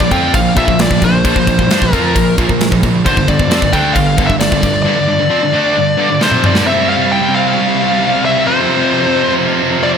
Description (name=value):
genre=heavy metal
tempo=133 BPM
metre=4/4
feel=straight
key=unclear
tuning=A4 = 441 Hz
part: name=high-gain lead guitar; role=melody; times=0.0-9.9 s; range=C5 to G5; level=-15 LUFS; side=left 3 dB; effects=distortion, slapback echo, tape echo
part: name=distorted electric guitar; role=riff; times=0.0-10.0 s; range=F2 to F4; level=-17 LUFS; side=left 9 dB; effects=overdrive, slapback echo
part: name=scooped high-gain guitar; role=riff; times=0.0-10.0 s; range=F2 to F4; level=-16 LUFS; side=right 10 dB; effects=distortion, slapback echo
part: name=fuzz picked electric bass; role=bass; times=0.0-4.8 s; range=G1 to G2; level=-18 LUFS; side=equal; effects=overdrive
part: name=tight metal drum kit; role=drums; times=0.0-6.7 s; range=crash cymbal, kick drum, snare drum, toms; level=-16 LUFS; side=equal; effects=none
room=moderate lush hall reverb, RT60 1.7 s, small room ambience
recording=big arena sound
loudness=-10 LUFS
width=side -7 dB against mid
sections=0.0-6.7 A section; 6.7-10.0 B section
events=drum fill 6.2-6.7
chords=0.0 Bb5; 3.1 G5; 6.7 C5; 8.5 F5